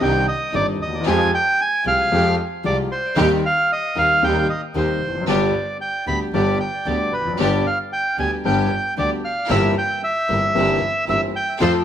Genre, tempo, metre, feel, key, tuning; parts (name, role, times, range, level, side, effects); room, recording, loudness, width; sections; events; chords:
tango; 114 BPM; 4/4; rubato; C harmonic minor; A4 = 440 Hz
bandoneon; melody; 0.0-11.7 s; B4 to B5; -20 LUFS; right 1 dB; tape echo
warm grand piano; accompaniment; 0.0-11.8 s; G1 to A4; -22 LUFS; left 2 dB
rich symphonic string section; stabs; 0.0-11.8 s; Ab3 to Bb4; -29 LUFS; right 1 dB
clear double bass; bass; 0.0-11.8 s; F1 to F2; -25 LUFS; right 2 dB
moderate large studio reverb, RT60 1.1 s; -17 LUFS; side -9 dB against mid
0.0-11.8 A section
0.0 Cmadd9; 1.1 Fmadd9; 3.2 Cm/Eb; 5.3 G; 9.5 C7/G